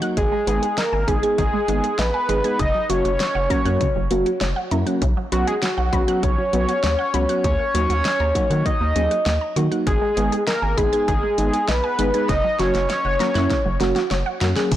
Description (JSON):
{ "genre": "synth-pop", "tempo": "99 BPM", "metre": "4/4", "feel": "straight", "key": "unclear", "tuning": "A4 = 439 Hz", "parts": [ { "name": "mellow FM electric piano", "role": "accompaniment", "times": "0.0-14.7 s", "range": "F#3 to G#4", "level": "-24 LUFS", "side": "right 1 dB", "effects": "chorus, phaser" }, { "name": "resonant blip pluck", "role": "arpeggios", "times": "0.0-14.8 s", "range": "C#3 to G#6", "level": "-29 LUFS", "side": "equal", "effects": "phaser, analog delay" }, { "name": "pop drum kit", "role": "drums", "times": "0.0-14.8 s", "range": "crash cymbal, hi-hat, kick drum, snare drum", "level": "-26 LUFS", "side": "equal", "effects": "none" }, { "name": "fat analog lead", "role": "melody", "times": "0.2-14.4 s", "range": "F#4 to D#5", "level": "-22 LUFS", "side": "equal", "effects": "chorus, analog delay" }, { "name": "rubbery square bass", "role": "bass", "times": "0.2-14.8 s", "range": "F#1 to D#3", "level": "-23 LUFS", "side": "equal", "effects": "none" }, { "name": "chorused pulse-width pad", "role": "sustained chords", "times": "14.7-14.8 s", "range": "none", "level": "barely audible", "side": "none", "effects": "none" } ], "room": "light reverb", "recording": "blown-out, overdriven recording, overdrive", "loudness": "-18 LUFS", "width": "side -12 dB against mid", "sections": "0.0-14.7 A section", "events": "drum fill 12.3-14.7", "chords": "0.2 G#m; 2.6 F#; 5.0 Bsus2; 7.4 D#m7; 9.9 G#m; 12.3 F#" }